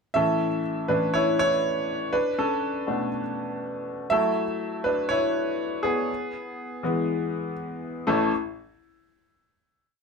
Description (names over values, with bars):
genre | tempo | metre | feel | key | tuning
pop | 121 BPM | 4/4 | straight | A major | A4 = 439 Hz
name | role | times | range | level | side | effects
bright grand piano | solo | 0.1-8.3 s | A1 to E5 | -24 LUFS | equal | none
room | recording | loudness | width
wet small room reverb, RT60 0.6 s | band playing live in one room | -24 LUFS | side -5 dB against mid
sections
0.1-8.1 verse; 8.1-10.0 final chord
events
grand piano solo 0.1-8.1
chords
0.1 A; 2.1 Bm7; 4.1 F#m7; 6.1 E; 8.1 A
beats
| 0.14 0.64 1.14 1.63 | 2.13 2.62 3.12 3.61 | 4.11 4.61 5.10 5.60 | 6.09 6.59 7.08 7.58 | 8.07